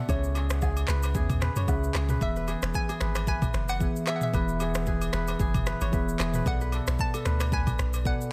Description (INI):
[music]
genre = afrobeats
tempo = 113 BPM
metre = 4/4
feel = swing 55% on 16ths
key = E mixolydian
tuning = A4 = 440 Hz
[part]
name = hollow square pluck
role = melody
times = 0.0-8.3 s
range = E5 to A5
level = -39 LUFS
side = equal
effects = chorus, dub echo
[part]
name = mellow tine electric piano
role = accompaniment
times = 0.0-8.3 s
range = B2 to E5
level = -35 LUFS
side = equal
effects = analog chorus, dub echo
[part]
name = kora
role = riff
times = 0.0-8.3 s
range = G#4 to C#5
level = -38 LUFS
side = equal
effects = dub echo
[part]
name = punchy sub bass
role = bass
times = 0.1-8.1 s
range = E1 to F#2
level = -31 LUFS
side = equal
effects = none
[part]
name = afro-pop drum kit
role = drums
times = 0.1-8.3 s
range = finger snaps, handclaps, kick drum, rim click, shaker, toms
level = -32 LUFS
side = equal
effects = dub echo
[part]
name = agogo bells and woodblock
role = percussion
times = 0.1-8.0 s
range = none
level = -44 LUFS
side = equal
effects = none
[sound]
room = light reverb, digital ambience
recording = echo-heavy mix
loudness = -27 LUFS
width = mono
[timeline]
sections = 0.0-8.3 A section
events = none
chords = 0.1 C#m; 2.2 E; 6.5 Bm7